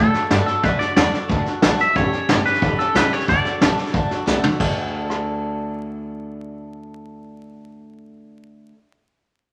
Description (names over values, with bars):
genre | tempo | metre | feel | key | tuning
rockabilly | 182 BPM | 4/4 | straight | D major | A4 = 440 Hz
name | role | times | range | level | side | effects
twangy electric guitar | melody | 0.0-4.2 s | A4 to E5 | -23 LUFS | equal | none
picked swing-style acoustic guitar | accompaniment | 0.0-8.8 s | A2 to A4 | -29 LUFS | equal | none
upright bass | bass | 0.0-8.7 s | G1 to A2 | -28 LUFS | equal | none
vintage brush drum kit | drums | 0.1-5.2 s | crash cymbal, hi-hat, kick drum, rim click, snare drum, toms | -22 LUFS | equal | none
room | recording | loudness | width
moderate large studio reverb, RT60 1.3 s | vinyl crackle | -19 LUFS | mono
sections
0.0-4.6 A section; 4.6-7.2 B section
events
drum fill 4.3-4.6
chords
0.0 D; 2.0 A7; 3.3 D